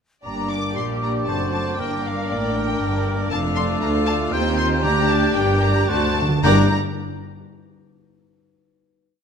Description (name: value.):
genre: quick classical-period movement for symphony orchestra.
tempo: 116 BPM.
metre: 3/4.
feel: uneven beats.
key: G minor.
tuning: A4 = 440 Hz.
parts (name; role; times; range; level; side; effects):
dark clarinet; second line; 0.2-6.7 s; D4 to Eb4; -31 LUFS; left 2 dB; none.
rich studio violin section; second line; 0.2-6.7 s; F4 to G5; -30 LUFS; left 4 dB; none.
warm oboe; second line; 0.2-6.7 s; A4 to D5; -30 LUFS; equal; none.
rich studio viola section; accompaniment; 0.2-6.7 s; G3 to G4; -27 LUFS; right 3 dB; none.
warm studio violin section; melody; 0.3-6.7 s; D5 to D6; -27 LUFS; left 2 dB; none.
mellow hollow concert flute; second line; 0.3-6.7 s; D6 to G6; -30 LUFS; left 2 dB; none.
mellow French horn section; sustained chords; 0.3-6.7 s; A3 to G4; -27 LUFS; left 5 dB; none.
rich studio cello section; bass; 0.3-6.7 s; D2 to Bb2; -26 LUFS; right 1 dB; none.
rich studio double bass section; bass; 0.3-6.7 s; F1 to Eb2; -26 LUFS; right 2 dB; none.
timpani; percussion; 1.8-2.5, 4.8-6.7 s; G2 to D3; -26 LUFS; equal; none.
room: wet recital hall reverb, RT60 1.6 s.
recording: none.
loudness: -18 LUFS.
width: side -7 dB against mid.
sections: 0.3-6.4 A section; 6.4-8.0 final chord.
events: timpani fill 5.9-6.4.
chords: 0.3 Gm; 1.3 D7/F#; 1.8 Gm; 3.3 Dm/F; 4.3 Cm/Eb; 4.8 Gm/D; 5.9 D7; 6.4 Gm.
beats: | 0.26 0.78 1.29 | 1.80 2.31 2.81 | 3.32 3.83 4.33 | 4.84 5.36 5.89 | 6.44.